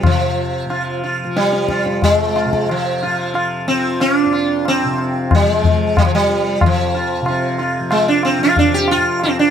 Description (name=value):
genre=indian classical, Hindustani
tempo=92 BPM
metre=5/4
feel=straight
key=F raga shivaranjani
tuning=A4 = 440 Hz
part: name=sitar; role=melody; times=0.0-9.5 s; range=F3 to G4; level=-16 LUFS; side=right 1 dB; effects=plate reverb
part: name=tanpura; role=drone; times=0.0-9.5 s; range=F2 to F3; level=-23 LUFS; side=equal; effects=none
part: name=tabla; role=percussion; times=0.0-9.4 s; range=none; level=-19 LUFS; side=left 3 dB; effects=none
room=moderate small room reverb, RT60 0.5 s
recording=none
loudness=-14 LUFS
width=side -8 dB against mid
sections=0.1-9.5 A section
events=speeding up 0.0-9.5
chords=none